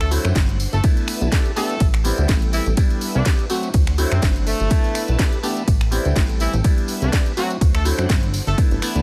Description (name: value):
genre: filtered disco house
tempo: 124 BPM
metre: 4/4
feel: swing 55% on 16ths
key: unclear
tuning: A4 = 440 Hz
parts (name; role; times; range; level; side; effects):
- bright horn section; melody; 0.0-8.6 s; C3 to A4; -31 LUFS; equal; sidechain pumping, dub echo
- string machine, full ensemble; sustained chords; 0.0-9.0 s; D4 to A5; -35 LUFS; equal; ensemble chorus, vintage 12-bit sampler grit, sidechain pumping
- plucky analog bass; bass; 0.0-9.0 s; G1 to F#2; -22 LUFS; equal; tube saturation, sidechain pumping
- house drum kit; drums; 0.0-9.0 s; finger snaps, hi-hat, ride cymbal, snare drum; -31 LUFS; equal; overdrive, sidechain pumping on hats, sidechain pumping on cymbals
- tambourine; percussion; 0.0-9.0 s; none; -37 LUFS; equal; sidechain pumping on perc
- clav; accompaniment; 0.1-9.0 s; F#3 to G4; -28 LUFS; equal; phaser, sidechain pumping
- electronic kick drum; drums; 0.4-8.7 s; none; -20 LUFS; equal; overdrive
room: digital ambience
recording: none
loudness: -19 LUFS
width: mono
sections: 0.0-9.0 A section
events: none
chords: 0.0 D7; 0.6 G69; 1.8 Am7; 2.8 Cmaj7 (rootless); 3.5 D7; 4.5 G69; 5.7 Am7; 6.6 Cmaj7 (rootless); 7.4 D7; 8.3 G69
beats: 0.35 0.84 1.32 | 1.81 2.29 2.77 3.26 | 3.74 4.23 4.71 5.19 | 5.68 6.16 6.64 7.13 | 7.61 8.10 8.58